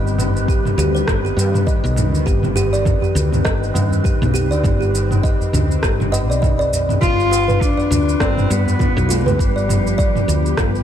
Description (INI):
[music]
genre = organic downtempo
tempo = 101 BPM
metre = 4/4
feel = swing 57% on 16ths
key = unclear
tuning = A4 = 440 Hz
[part]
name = bowed-like drone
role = sustained chords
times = 0.0-10.8 s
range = Eb3 to G4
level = -26 LUFS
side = left 2 dB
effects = built-in reverb, sidechain pumping, shimmer reverb
[part]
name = kalimba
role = arpeggios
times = 0.0-10.8 s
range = F4 to Eb5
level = -23 LUFS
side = right 2 dB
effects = digital delay, shimmer reverb
[part]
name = woody fretless electric bass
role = bass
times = 0.0-10.8 s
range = G1 to G2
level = -19 LUFS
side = equal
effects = ensemble chorus, sidechain pumping
[part]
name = wind-like tuned noise texture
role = texture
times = 0.0-10.8 s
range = B4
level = -30 LUFS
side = equal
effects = built-in reverb, shimmer reverb
[part]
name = deep house drum kit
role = drums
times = 0.1-10.8 s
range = rim click, shaker, toms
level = -22 LUFS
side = equal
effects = overdrive
[part]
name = tabla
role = percussion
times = 0.1-10.4 s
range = none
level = -28 LUFS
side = right 1 dB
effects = none
[part]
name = electronic kick drum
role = drums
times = 0.5-10.7 s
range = none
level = -20 LUFS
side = equal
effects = none
[part]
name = dark cello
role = melody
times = 7.0-10.5 s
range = G3 to F4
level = -20 LUFS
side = left 2 dB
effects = ping-pong delay, shimmer reverb
[sound]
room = light reverb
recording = dark, warm production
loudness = -14 LUFS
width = side -10 dB against mid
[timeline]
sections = 0.0-10.8 A section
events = none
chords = 0.0 Cmmaj7/G; 7.0 G7